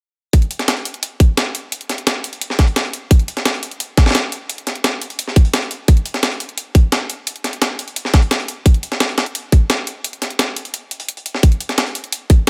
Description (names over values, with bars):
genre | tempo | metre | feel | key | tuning
drum and bass | 173 BPM | 4/4 | straight | none | none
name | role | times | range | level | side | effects
breakbeat sampler-style drum kit | drums | 0.3-12.5 s | hi-hat, snare drum | -22 LUFS | equal | high-pass filter on hats, high-pass filter on snare
electronic hi-hat | drums | 0.3-12.5 s | none | -26 LUFS | equal | none
electronic kick drum | drums | 0.3-12.4 s | none | -12 LUFS | equal | none
room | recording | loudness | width
little or no reverb | none | -18 LUFS | mono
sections
0.3-12.5 A section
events
break 10.7-11.4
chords
none